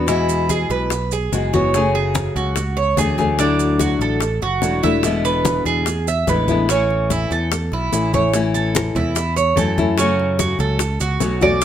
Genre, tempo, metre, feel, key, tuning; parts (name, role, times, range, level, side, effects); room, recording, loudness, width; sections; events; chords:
latin, Cuban son and guajira; 146 BPM; 4/4; straight; A major; A4 = 440 Hz
nylon-string guitar; accompaniment; 0.0-11.6 s; B2 to G#4; -20 LUFS; left 4 dB
Cuban tres; arpeggios; 0.0-11.6 s; C#4 to E5; -21 LUFS; right 5 dB
picked electric bass; bass; 0.0-11.6 s; E1 to F#2; -22 LUFS; equal
bongos; percussion; 0.1-11.6 s; -27 LUFS; left 8 dB
congas; percussion; 0.1-11.6 s; -25 LUFS; left 2 dB
maracas; percussion; 0.1-11.6 s; -29 LUFS; right 10 dB
moderate studio reverb, RT60 0.7 s; -16 LUFS; side -10 dB against mid
0.0-8.3 A section; 8.3-11.6 A section
0.1 Eadd9; 1.7 F#madd9; 3.4 Dadd9; 5.0 E7; 6.7 A; 10.0 F#m